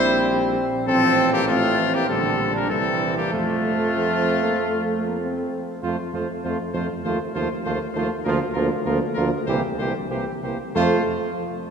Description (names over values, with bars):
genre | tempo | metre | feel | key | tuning
classical, brass quintet | 98 BPM | 4/4 | straight | F major | A4 = 440 Hz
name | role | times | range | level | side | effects
clear trumpet | melody | 0.0-11.0 s | F4 to C5 | -26 LUFS | left 4 dB | none
warm flugelhorn | second line | 0.0-11.0 s | A3 to G4 | -27 LUFS | right 5 dB | none
mellow French horn | accompaniment | 0.0-11.0 s | G3 to C4 | -26 LUFS | left 1 dB | none
warm trombone | accompaniment | 0.0-11.0 s | D3 to G3 | -30 LUFS | right 2 dB | none
mellow tuba | bass | 0.0-11.0 s | A1 to F2 | -26 LUFS | right 2 dB | none
room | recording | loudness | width
wet church reverb, RT60 3.8 s | minimal, uncompressed stereo recording | -20 LUFS | side -6 dB against mid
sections
0.0-5.8 A section; 5.8-10.8 B section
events
none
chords
0.0 C7/Bb; 0.9 F/A; 2.1 Gm/Bb; 2.7 C; 3.3 F; 7.0 F7/Eb; 8.3 Bb/D; 9.5 C7; 10.8 F